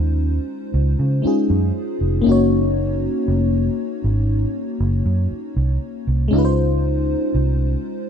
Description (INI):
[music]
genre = contemporary R&B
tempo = 59 BPM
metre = 4/4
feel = straight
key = Db major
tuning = A4 = 440 Hz
[part]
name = FM electric piano with soft pad layer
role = accompaniment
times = 0.0-8.1 s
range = Ab3 to Db5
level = -21 LUFS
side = left 2 dB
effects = chorus
[part]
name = vintage muted fingered electric bass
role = bass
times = 0.0-7.7 s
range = F1 to Db3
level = -18 LUFS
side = right 1 dB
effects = none
[sound]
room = light reverb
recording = none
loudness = -17 LUFS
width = side -8 dB against mid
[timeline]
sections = 0.0-8.1 A section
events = none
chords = 0.0 Dbmaj9; 2.3 Gb6; 6.3 Dbmaj9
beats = 0.23 1.24 | 2.26 3.28 4.29 5.31 | 6.33 7.34